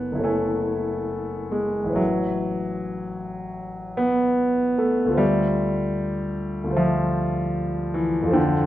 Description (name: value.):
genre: classical, impressionist solo piano.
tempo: 69-80 BPM.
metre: 4/4.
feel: rubato.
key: unclear.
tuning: A4 = 439 Hz.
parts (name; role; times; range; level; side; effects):
warm concert grand piano; solo; 0.0-8.7 s; F#1 to G#5; -21 LUFS; equal; none.
room: wet scoring stage reverb, RT60 1.7 s.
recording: none.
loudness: -21 LUFS.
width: side -14 dB against mid.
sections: 0.0-8.7 A section.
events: none.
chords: 0.0 F#m9; 2.0 A69; 5.2 Dm9.